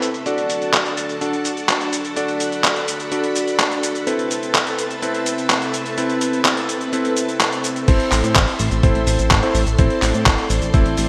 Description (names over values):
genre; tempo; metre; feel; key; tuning
italo disco; 126 BPM; 4/4; straight; A dorian, A minor from 7.9 s; A4 = 440 Hz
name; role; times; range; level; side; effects
string machine, full ensemble; sustained chords; 0.0-11.1 s; C4 to C6; -28 LUFS; equal; ensemble chorus
clear electric grand piano; stabs; 0.0-11.1 s; C4 to D5; -25 LUFS; equal; delay
dusty soul sampler-style drum kit; drums; 0.0-11.1 s; cabasa, crash cymbal, handclaps, hi-hat; -23 LUFS; equal; overdrive, low-pass filter on snare, low-pass filter on hats, low-pass filter on perc, low-pass filter on cymbals, low-pass filter on room, gated reverb
chorused synth bass; bass; 7.9-11.1 s; A1 to A2; -22 LUFS; equal; tube saturation
electronic kick drum; drums; 7.9-10.8 s; none; -18 LUFS; equal; none
room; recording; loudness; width
moderate lush hall reverb, RT60 1.8 s; bright 1980s-style digital production; -19 LUFS; mono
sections
0.0-7.9 A section; 7.9-11.1 B section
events
none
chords
0.3 D; 4.1 Amadd9; 7.9 Am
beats
| 0.26 0.74 1.21 1.69 | 2.17 2.64 3.12 3.59 | 4.07 4.55 5.02 5.50 | 5.97 6.45 6.93 7.40 | 7.88 8.36 8.83 9.31 | 9.79 10.26 10.74